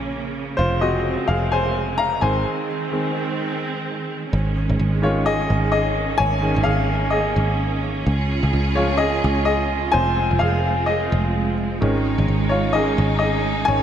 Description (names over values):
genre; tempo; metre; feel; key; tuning
pop; 128 BPM; 4/4; swing 56% on 16ths; unclear; A4 = 440 Hz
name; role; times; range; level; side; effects
bright upright piano; accompaniment; 0.0-13.8 s; Eb3 to Bb5; -21 LUFS; left 1 dB; none
clear studio string section; sustained chords; 0.0-13.8 s; Db3 to Ab4; -26 LUFS; right 3 dB; none
picked electric bass; bass; 0.0-13.8 s; F1 to Db2; -22 LUFS; equal; none
room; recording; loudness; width
moderate lush hall reverb, RT60 2.7 s; dreamy mix soaked in reverb; -18 LUFS; side -9 dB against mid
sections
0.0-4.3 A section; 4.3-13.8 B section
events
upright piano solo 0.0-4.3, 4.3-13.8; break 2.5-4.3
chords
0.0 Bbm; 0.6 Fm; 2.2 Ab; 4.3 Absus4; 8.1 Db; 9.9 Fm; 11.8 Absus4